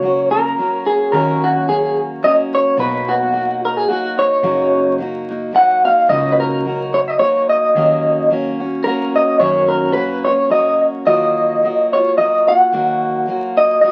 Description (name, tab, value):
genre	acoustic folk duo or small band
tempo	109 BPM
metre	3/4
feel	swing 55% on 8ths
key	unclear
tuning	A4 = 440 Hz
part	electric guitar through a small old amp	melody	0.0-13.9 s	F#4 to F#5	-16 LUFS	equal	harmonic tremolo
part	picked steel-string acoustic guitar	accompaniment	0.0-13.9 s	F#2 to F#4	-23 LUFS	equal	none
part	woody fretless electric bass	bass	0.0-10.5 s	F#1 to F#2	-30 LUFS	equal	none
room	wet studio ambience, RT60 0.5 s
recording	very old 78 rpm record, vinyl crackle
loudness	-16 LUFS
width	mono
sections	0.0-11.1 A section; 11.1-13.9 B section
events	clean electric guitar solo 0.0-11.1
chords	0.0 F#; 1.1 D#m7; 2.8 Bmaj7; 4.4 F#6; 7.8 D#m7; 9.4 F#6; 11.1 D#madd9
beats	0.03 0.58 | 1.13 1.68 2.23 | 2.79 3.34 3.89 | 4.44 4.99 5.54 | 6.10 6.65 7.20 | 7.75 8.30 8.86 | 9.41 9.96 10.51 | 11.06 11.62 12.17 | 12.72 13.27 13.83